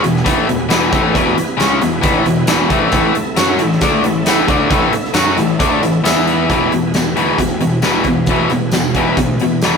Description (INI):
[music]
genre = classic rock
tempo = 134 BPM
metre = 4/4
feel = straight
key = E mixolydian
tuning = A4 = 438 Hz
[part]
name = bright tonewheel organ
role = sustained chords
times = 0.0-9.8 s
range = E4 to E5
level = -26 LUFS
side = right 1 dB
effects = none
[part]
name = biting overdriven guitar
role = riff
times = 0.0-9.8 s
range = E2 to F#4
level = -15 LUFS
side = left 4 dB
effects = none
[part]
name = distorted electric guitar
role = riff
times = 0.0-9.8 s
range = E2 to F#4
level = -20 LUFS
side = right 6 dB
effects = distortion
[part]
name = fuzz picked electric bass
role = bass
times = 0.0-9.8 s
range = E1 to F#2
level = -22 LUFS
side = right 1 dB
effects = overdrive
[part]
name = huge arena drum kit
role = drums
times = 0.0-9.7 s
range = hi-hat, kick drum, snare drum, tambourine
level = -17 LUFS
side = equal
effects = none
[part]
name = tambourine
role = percussion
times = 3.4-6.2 s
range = none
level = -32 LUFS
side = right 7 dB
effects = none
[sound]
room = moderate studio reverb, RT60 0.6 s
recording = rough rehearsal-room recording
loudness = -12 LUFS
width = side -5 dB against mid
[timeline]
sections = 0.0-6.5 A section; 6.5-9.8 B section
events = none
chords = 0.0 E; 2.9 A5; 6.0 E5; 6.5 E